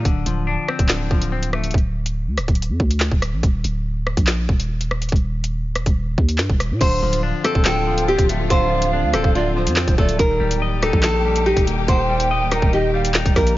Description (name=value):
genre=hip hop, drill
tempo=142 BPM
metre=4/4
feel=half-time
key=D phrygian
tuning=A4 = 438 Hz
part: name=semi-hollow electric guitar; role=accompaniment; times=0.0-1.7, 6.8-13.6 s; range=D3 to Eb5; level=-25 LUFS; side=left 5 dB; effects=lush chorus
part: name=growling 808-style bass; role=bass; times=0.0-13.6 s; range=D1 to Bb2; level=-22 LUFS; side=equal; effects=none
part: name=drill drum kit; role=drums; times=0.1-13.6 s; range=crash cymbal, handclaps, hi-hat, kick drum, rim click, snare drum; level=-19 LUFS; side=equal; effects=none
part: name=nylon-string guitar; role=melody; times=6.8-13.6 s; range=F4 to C5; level=-21 LUFS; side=equal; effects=none
part: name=dark symphonic string section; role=sustained chords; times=6.8-13.5 s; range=D3 to G4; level=-29 LUFS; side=left 2 dB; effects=none
part: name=mellow polished pan flute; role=second line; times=7.7-13.1 s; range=C5 to A5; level=-26 LUFS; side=right 4 dB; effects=digital delay
room=studio ambience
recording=nothing above 7.4 kHz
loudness=-17 LUFS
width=side -16 dB against mid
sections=0.0-6.8 A section; 6.8-13.6 B section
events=none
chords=0.1 Dm7; 3.4 N.C.; 6.8 Dm7; 10.2 Eb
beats=| 0.05 0.47 0.90 1.32 | 1.74 2.17 2.59 3.01 | 3.43 3.85 4.28 4.70 | 5.12 5.54 5.97 6.39 | 6.81 7.24 7.66 8.08 | 8.50 8.93 9.35 9.77 | 10.19 10.62 11.04 11.46 | 11.88 12.30 12.73 13.15